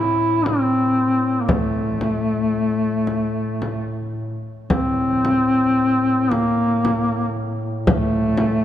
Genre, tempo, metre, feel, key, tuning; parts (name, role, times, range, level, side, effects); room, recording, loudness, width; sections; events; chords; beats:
caucasian folk, Caucasian lament; 55-60 BPM; 3/4; rubato; A phrygian; A4 = 441 Hz
mellow duduk; melody; 0.0-8.6 s; A3 to E4; -19 LUFS; left 1 dB
dark duduk; drone; 0.0-8.6 s; A2; -26 LUFS; equal
frame drum; percussion; 0.5-8.6 s; -23 LUFS; left 1 dB
moderate church reverb, RT60 3.0 s; dark, warm production; -18 LUFS; side -11 dB against mid
0.0-4.7 A section; 4.7-8.6 B section
0.46 | 1.48 2.54 3.61 | 4.70 5.78 6.84 | 7.86